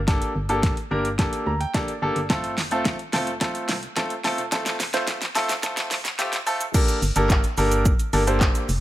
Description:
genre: dance-pop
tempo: 108 BPM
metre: 4/4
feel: straight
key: G minor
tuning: A4 = 440 Hz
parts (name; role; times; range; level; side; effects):
- organ-like FM bass; bass; 0.0-8.8 s; F1 to D2; -26 LUFS; equal; sidechain pumping
- clear baby grand piano; accompaniment; 0.1-8.7 s; A3 to Bb5; -24 LUFS; equal; sidechain pumping
- pop drum kit; drums; 0.1-8.8 s; crash cymbal, handclaps, hi-hat, kick drum, shaker, snare drum; -23 LUFS; equal; none
room: digital ambience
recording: high-pass filter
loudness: -21 LUFS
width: side -14 dB against mid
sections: 0.0-6.7 A section; 6.7-8.8 B section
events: build-up 0.0-6.7; drum fill 0.0-6.7; filter sweep 0.0-6.7; grand piano fill 1.2-2.3; drop 6.7-8.8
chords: 0.0 Gmadd9; 2.3 F; 6.7 Gmadd9

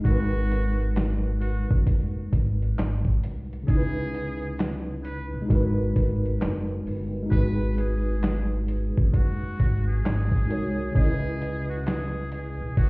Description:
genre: lo-fi hip hop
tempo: 66 BPM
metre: 4/4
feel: swing 63% on 16ths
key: G# minor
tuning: A4 = 438 Hz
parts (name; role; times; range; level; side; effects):
- tine electric piano; accompaniment; 0.0-12.9 s; C#3 to D#5; -30 LUFS; equal; medium stereo tremolo
- trumpet with metal mute; melody; 0.1-12.9 s; F#4 to B4; -38 LUFS; equal; analog delay
- upright bass; bass; 0.1-12.9 s; F#1 to C#2; -26 LUFS; equal; none
- dusty soul sampler-style drum kit; drums; 0.1-12.9 s; handclaps, hi-hat, kick drum, snare drum; -24 LUFS; equal; vintage 12-bit sampler grit
room: light reverb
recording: heard muffled through a wall, stone room reverb, EQ, lossy compression artefacts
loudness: -23 LUFS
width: side -27 dB against mid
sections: 0.0-7.3 A section; 7.3-12.9 B section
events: none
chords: 0.0 G#m7; 3.7 C#m7; 5.5 G#m7; 11.0 C#m7

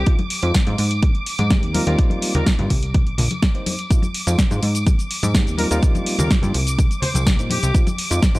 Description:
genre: filtered disco house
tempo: 125 BPM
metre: 4/4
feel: straight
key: F dorian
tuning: A4 = 440 Hz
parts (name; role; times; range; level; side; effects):
- mellow trumpet section; melody; 0.0-2.5, 5.6-7.8 s; G4 to C5; -29 LUFS; left 2 dB; sidechain pumping, low-pass filter
- warm studio violin section; sustained chords; 0.0-8.4 s; D6; -29 LUFS; equal; sidechain pumping, low-pass filter
- plucky analog bass; bass; 0.0-8.4 s; Bb1 to Bb2; -20 LUFS; equal; tube saturation, sidechain pumping, low-pass filter
- tine electric piano; accompaniment; 0.1-8.4 s; F3 to C5; -26 LUFS; equal; overdrive, phaser, sidechain pumping, low-pass filter
- electronic kick drum; drums; 0.1-8.3 s; none; -17 LUFS; equal; none
- punchy analog drum machine; drums; 0.1-8.4 s; cabasa, hi-hat, snare drum; -24 LUFS; equal; sidechain pumping on hats, sidechain pumping on perc
- tambourine and congas; percussion; 0.1-8.4 s; none; -28 LUFS; left 2 dB; sidechain pumping on perc, low-pass filter on perc
room: digital ambience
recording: dry, gritty hardware recording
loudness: -16 LUFS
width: side -20 dB against mid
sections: 0.0-8.4 A section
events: none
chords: 0.1 Fm7; 0.8 Abmaj9; 1.7 Eb69; 2.9 Cm7; 3.9 Fm7; 4.6 Abmaj9; 5.6 Eb69; 6.8 Cm7; 7.7 Fm7

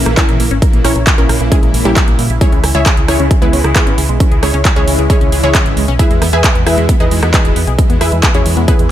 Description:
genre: uplifting trance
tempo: 134 BPM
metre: 4/4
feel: straight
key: unclear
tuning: A4 = 440 Hz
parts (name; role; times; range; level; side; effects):
- wide unison pluck; melody; 0.0-8.9 s; G3 to G#5; -17 LUFS; equal; cassette tape, sidechain pumping, tape echo
- supersaw pad; sustained chords; 0.0-8.9 s; B2 to E4; -20 LUFS; equal; phaser, sidechain pumping
- solid FM bass; bass; 0.0-8.9 s; E1 to A#2; -16 LUFS; equal; sidechain pumping
- tight sequenced synth; arpeggios; 0.1-8.9 s; G#3 to E5; -22 LUFS; right 2 dB; chorus, sidechain pumping, tape echo
- big-room dance drum kit; drums; 0.1-8.9 s; handclaps, hi-hat, rim click; -17 LUFS; right 1 dB; overdrive, sidechain pumping on hats, studio reverb, sidechain pumping on cymbals
- electronic kick drum; drums; 0.2-8.8 s; none; -12 LUFS; equal; overdrive, studio reverb
room: little or no reverb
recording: none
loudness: -9 LUFS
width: side -12 dB against mid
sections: 0.0-8.9 A section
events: none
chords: 0.0 A#dim; 2.4 C#m; 6.0 E

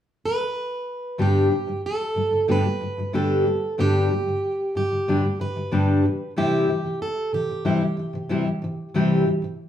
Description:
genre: pop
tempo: 93 BPM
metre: 4/4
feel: straight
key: G major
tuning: A4 = 440 Hz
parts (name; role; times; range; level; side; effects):
- picked plugged-in steel-string acoustic guitar; melody; 0.3-9.7 s; G4 to B4; -26 LUFS; right 2 dB; none
- fingerpicked steel-string acoustic guitar; accompaniment; 1.2-9.7 s; G2 to G4; -21 LUFS; left 1 dB; none
room: wet large studio reverb, RT60 0.8 s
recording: band playing live in one room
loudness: -21 LUFS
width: side -10 dB against mid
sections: 0.0-1.2 A section; 1.2-9.7 B section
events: none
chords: 0.0 N.C.; 1.2 G; 6.0 C

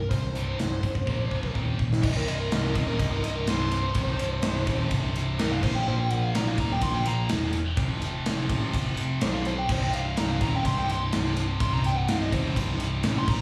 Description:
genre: hard rock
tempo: 125 BPM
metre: 4/4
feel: straight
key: C minor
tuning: A4 = 441 Hz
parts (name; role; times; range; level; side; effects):
- dark smooth lead guitar; melody; 0.0-13.4 s; Bb4 to C6; -34 LUFS; equal; overdrive, plate reverb, slapback echo, tape echo
- heavy high-gain guitar; riff; 0.0-13.4 s; C2 to Bb3; -34 LUFS; equal; distortion
- modern bright picked electric bass; bass; 0.0-13.4 s; C1 to B1; -31 LUFS; equal; none
- gated 80s drum kit; drums; 0.1-13.4 s; crash cymbal, hi-hat, kick drum, ride cymbal, snare drum; -31 LUFS; equal; none
room: light reverb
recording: live gig heard through the venue's PA, club reverb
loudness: -26 LUFS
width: mono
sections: 0.0-2.0 A section; 2.0-13.4 B section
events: drum fill 1.1-2.0; lead electric guitar solo 2.0-13.4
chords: 0.0 C5; 1.1 Bb5; 1.6 Eb5; 2.0 C5; 5.6 Bb5; 7.8 F5; 9.7 C5

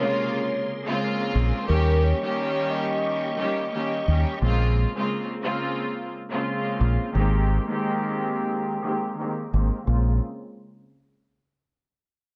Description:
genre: hip hop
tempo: 88 BPM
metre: 4/4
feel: swing 59% on 16ths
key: Bb dorian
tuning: A4 = 440 Hz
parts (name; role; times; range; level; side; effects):
- vibraphone with soft mallets; melody; 0.0-4.4 s; Bb4 to Eb5; -31 LUFS; equal; high-pass filter, low-pass filter, tape echo
- warm studio string section; accompaniment; 0.0-10.1 s; C3 to G4; -28 LUFS; equal; cassette tape, high-pass filter, low-pass filter
- bright tonewheel organ; sustained chords; 0.0-4.4 s; G4 to Db6; -38 LUFS; equal; overdrive, chorus vibrato, slow rotary speaker, high-pass filter, low-pass filter
- deep dub fingered electric bass; bass; 1.4-10.2 s; Ab1 to Eb2; -23 LUFS; equal; none
room: light reverb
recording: none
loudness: -25 LUFS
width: mono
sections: 0.0-4.4 A section; 4.4-9.9 B section; 9.9-12.4 C section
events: filter sweep on string section 4.4-9.9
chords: 0.0 Bbm9; 1.7 Eb7; 4.4 Bbm9; 7.1 Abmaj9; 9.9 Bbm9

